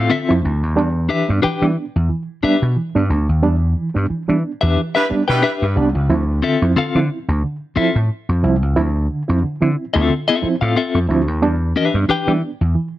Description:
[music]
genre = funk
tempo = 90 BPM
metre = 4/4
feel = swing 56% on 16ths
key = D dorian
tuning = A4 = 440 Hz
[part]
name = clean electric guitar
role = accompaniment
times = 0.0-12.3 s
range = C4 to G5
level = -18 LUFS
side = left 5 dB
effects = tremolo
[part]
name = vintage slap bass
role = bass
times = 0.0-12.7 s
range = C2 to E3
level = -17 LUFS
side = equal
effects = none
[part]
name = reed electric piano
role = stabs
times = 0.1-12.9 s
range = D3 to E4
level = -20 LUFS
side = right 3 dB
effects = tremolo
[part]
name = clear horn section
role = second line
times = 4.9-5.5 s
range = G3 to B4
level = -23 LUFS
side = right 2 dB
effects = tape echo
[sound]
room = little or no reverb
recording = none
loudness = -15 LUFS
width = side -14 dB against mid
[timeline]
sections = 0.0-13.0 A section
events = band accent 3.4-6.1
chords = 0.0 Dm9; 0.8 Em7; 6.1 Dm9; 11.4 Em7

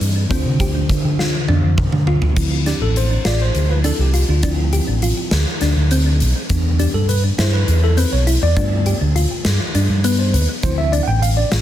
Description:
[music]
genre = progressive instrumental, band music in an uneven meter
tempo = 203 BPM (eighths)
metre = 7/8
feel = straight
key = D dorian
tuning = A4 = 440 Hz
[part]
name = tine electric piano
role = accompaniment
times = 0.0-11.5 s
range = D3 to G5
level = -23 LUFS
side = equal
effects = fast stereo tremolo
[part]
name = thumb-piano-like synth pluck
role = arpeggios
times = 0.0-11.6 s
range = B3 to G4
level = -25 LUFS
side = left 2 dB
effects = chorus, digital delay
[part]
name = picked electric bass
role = bass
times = 0.0-11.6 s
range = A1 to D3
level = -16 LUFS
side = equal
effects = none
[part]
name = huge arena drum kit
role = drums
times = 0.0-11.6 s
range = crash cymbal, hi-hat, kick drum, snare drum, toms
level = -21 LUFS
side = equal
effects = soft clipping on kick
[part]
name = egg shaker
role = percussion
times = 2.4-11.6 s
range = none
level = -39 LUFS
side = right 7 dB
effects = none
[sound]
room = light reverb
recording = dense, heavily limited modern master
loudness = -14 LUFS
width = side -12 dB against mid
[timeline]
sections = 0.0-2.4 A section; 2.4-11.6 B section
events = drum fill 1.2-2.4; tine electric piano solo 2.4-11.6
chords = 0.3 Dm7; 6.5 Cmaj7/E; 8.6 G7; 10.6 Dm7

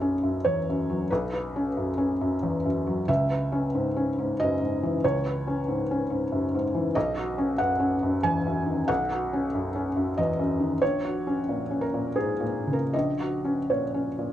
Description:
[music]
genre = neoclassical minimalist piano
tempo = 75-96 BPM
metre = 3/4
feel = rubato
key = B major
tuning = A4 = 440 Hz
[part]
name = felt-muted upright piano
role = solo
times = 0.0-14.3 s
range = A#1 to G#5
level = -24 LUFS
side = equal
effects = none
[sound]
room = moderate studio reverb, RT60 0.8 s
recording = worn, warbling old tape, cassette tape, warbly pitch drift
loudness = -24 LUFS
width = side -12 dB against mid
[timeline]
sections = 0.0-14.3 A section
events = none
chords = 0.0 Badd9; 3.1 C#m7; 7.0 Badd9; 10.8 F#/A#

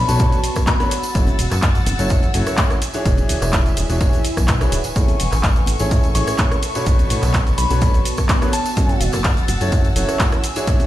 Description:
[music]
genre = piano house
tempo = 126 BPM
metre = 4/4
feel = swing 53% on 16ths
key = unclear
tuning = A4 = 441 Hz
[part]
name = soft synth bell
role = melody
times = 0.0-1.0, 6.2-9.0 s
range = A5 to C#6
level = -26 LUFS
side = left 3 dB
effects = chorus, tape echo
[part]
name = dark studio string section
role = sustained chords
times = 0.0-10.9 s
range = A4 to A6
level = -30 LUFS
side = left 2 dB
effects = sidechain pumping
[part]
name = clear concert grand piano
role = riff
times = 0.0-10.9 s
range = A2 to C#5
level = -25 LUFS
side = equal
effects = sidechain pumping, tape echo
[part]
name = plucky analog bass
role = bass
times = 0.0-10.8 s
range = D1 to B1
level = -20 LUFS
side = equal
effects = tube saturation, sidechain pumping
[part]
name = deep dark ambient pad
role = texture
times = 0.0-10.9 s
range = B3 to B5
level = -30 LUFS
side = right 1 dB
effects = chorus, built-in reverb, sidechain pumping
[part]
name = house drum kit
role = drums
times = 0.1-10.9 s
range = handclaps, hi-hat, ride cymbal, rim click, shaker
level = -24 LUFS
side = equal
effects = small room ambience
[part]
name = tambourine and congas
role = percussion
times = 0.1-10.9 s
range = none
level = -32 LUFS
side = right 2 dB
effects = none
[part]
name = electronic kick drum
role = drums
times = 0.2-10.8 s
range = none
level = -18 LUFS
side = equal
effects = small room ambience
[sound]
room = little or no reverb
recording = played on a big sound system in a bare room, large studio reverb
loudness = -15 LUFS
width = side -14 dB against mid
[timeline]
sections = 0.0-10.9 A section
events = none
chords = 0.0 Bm9; 0.9 F#m7; 2.8 E13; 5.0 Amaj7; 6.6 Bm9; 8.5 F#m7

